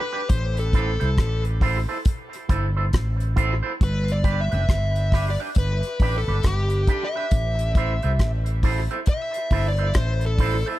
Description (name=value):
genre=roots reggae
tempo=68 BPM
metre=4/4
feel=swing 61% on 16ths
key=unclear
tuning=A4 = 439 Hz
part: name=dark smooth lead guitar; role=melody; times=0.0-10.7 s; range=G4 to E5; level=-29 LUFS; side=left 1 dB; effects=overdrive, dub echo
part: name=electric guitar with an envelope filter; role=accompaniment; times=0.0-10.8 s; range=D4 to C5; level=-29 LUFS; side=right 4 dB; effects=dub echo
part: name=fretless electric bass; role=bass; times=0.3-10.6 s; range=F#1 to C2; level=-23 LUFS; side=equal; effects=none
part: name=damped 70s drum kit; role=drums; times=0.3-10.6 s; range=hi-hat, kick drum, rim click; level=-21 LUFS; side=equal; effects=none
room=little or no reverb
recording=echo-heavy mix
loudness=-20 LUFS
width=side -16 dB against mid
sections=0.0-10.8 A section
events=lead electric guitar solo 0.0-10.8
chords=0.3 Am; 3.8 G; 7.3 Am